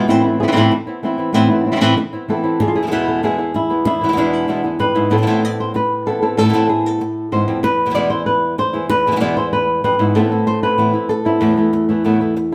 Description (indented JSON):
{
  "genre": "flamenco",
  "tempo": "191 BPM",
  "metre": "4/4",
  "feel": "straight",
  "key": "unclear",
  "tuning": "A4 = 440 Hz",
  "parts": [
    { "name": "flamenco guitar", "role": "melody", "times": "0.0-12.5 s", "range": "E2 to D5", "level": "-18 LUFS", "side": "equal", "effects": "none" },
    { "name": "flamenco guitar", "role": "stabs", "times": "0.0-12.5 s", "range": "E2 to E4", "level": "-22 LUFS", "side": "equal", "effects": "none" }
  ],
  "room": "moderate studio reverb, RT60 0.9 s",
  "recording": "none",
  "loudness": "-17 LUFS",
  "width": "mono",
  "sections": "0.0-2.6 A section; 2.6-12.5 B section",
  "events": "none",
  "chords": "0.1 Amadd9; 2.6 E; 5.1 Amadd9; 7.6 E; 10.2 Amadd9; 11.4 Esus4"
}